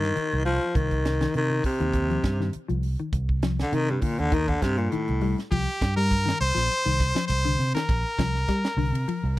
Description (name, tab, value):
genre	afrobeat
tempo	101 BPM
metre	4/4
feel	swing 54% on 16ths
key	C dorian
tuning	A4 = 440 Hz
part	growling baritone saxophone	melody	0.0-5.4 s	G2 to F3	-26 LUFS	left 1 dB	none
part	mellow electric guitar	arpeggios	0.0-9.3 s	D3 to G3	-30 LUFS	left 4 dB	wide subtle chorus
part	fingered electric bass	bass	0.0-9.4 s	Bb1 to C3	-26 LUFS	right 1 dB	none
part	tight funk drum kit	drums	0.0-9.2 s	hi-hat, kick drum, ride cymbal, snare drum	-28 LUFS	right 1 dB	none
part	brilliant trumpet	melody	5.5-9.4 s	G4 to C5	-26 LUFS	left 1 dB	none
room	studio reverb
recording	dry, close 1970s-style studio recording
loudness	-22 LUFS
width	side -17 dB against mid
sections	0.0-5.5 A section; 5.5-9.4 B section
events	baritone saxophone solo 0.0-5.5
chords	0.0 Cm; 5.5 Cm11